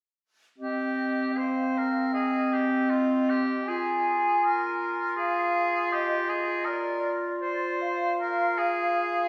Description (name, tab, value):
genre	cinematic, emotional film score for orchestra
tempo	78 BPM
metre	4/4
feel	rubato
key	C minor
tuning	A4 = 437 Hz
part	bright clarinet	second line	0.6-9.3 s	C4 to F4	-30 LUFS	equal	none
part	clear oboe	second line	0.6-9.3 s	F4 to C5	-32 LUFS	equal	none
part	hollow flute section	second line	0.6-9.3 s	D5 to Ab5	-32 LUFS	equal	none
room	wet concert hall reverb, RT60 2.1 s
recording	heard from further back in the room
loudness	-27 LUFS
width	mono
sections	0.6-9.3 A section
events	none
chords	0.6 Cm; 3.7 Fm; 6.7 Bb/F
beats	| 0.59 1.37 2.13 2.90 | 3.67 4.42 5.17 5.92 | 6.66 7.42 8.19 8.95